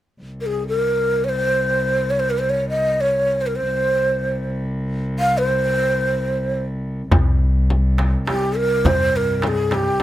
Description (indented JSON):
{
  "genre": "Arabic maqam ensemble",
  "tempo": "free time",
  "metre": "none",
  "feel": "none",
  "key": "unclear",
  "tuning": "A4 = 441 Hz",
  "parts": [
    { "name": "dark cello", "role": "drone", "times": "0.2-10.0 s", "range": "C2", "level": "-25 LUFS", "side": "equal", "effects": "none" },
    { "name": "breathy mellow ney", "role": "melody", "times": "0.4-10.0 s", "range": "G4 to F5", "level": "-19 LUFS", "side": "equal", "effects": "none" },
    { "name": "upright bass", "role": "bass", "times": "7.1-9.9 s", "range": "C2 to G2", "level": "-19 LUFS", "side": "equal", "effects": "none" },
    { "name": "darbuka", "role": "percussion", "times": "7.1-10.0 s", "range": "none", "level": "-23 LUFS", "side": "right 1 dB", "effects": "none" },
    { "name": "frame drum", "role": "percussion", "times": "7.1-10.0 s", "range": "none", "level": "-22 LUFS", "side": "left 2 dB", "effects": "none" }
  ],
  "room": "little or no reverb",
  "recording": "close, detailed microphones",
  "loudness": "-17 LUFS",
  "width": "side -13 dB against mid",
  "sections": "0.2-7.1 A section; 7.1-10.0 B section",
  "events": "none",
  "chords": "none"
}